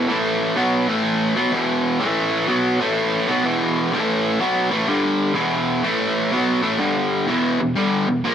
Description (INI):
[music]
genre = rock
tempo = 125 BPM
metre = 4/4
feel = swing 66% on 8ths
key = unclear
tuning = A4 = 442 Hz
[part]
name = raw garage guitar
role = solo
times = 0.0-8.3 s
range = E2 to B3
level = -17 LUFS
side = equal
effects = overdrive
[sound]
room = light reverb, digital ambience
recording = none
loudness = -17 LUFS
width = side -8 dB against mid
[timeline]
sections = 0.0-7.3 A section; 7.3-8.3 B section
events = none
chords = 0.1 A5; 0.6 B5; 0.8 A5; 1.3 E5; 2.0 A5; 2.5 B5; 2.7 A5; 3.2 E5; 3.9 A5; 4.4 E5; 4.9 G5; 5.4 E5; 5.8 A5; 6.3 E5; 6.8 G5; 7.3 E5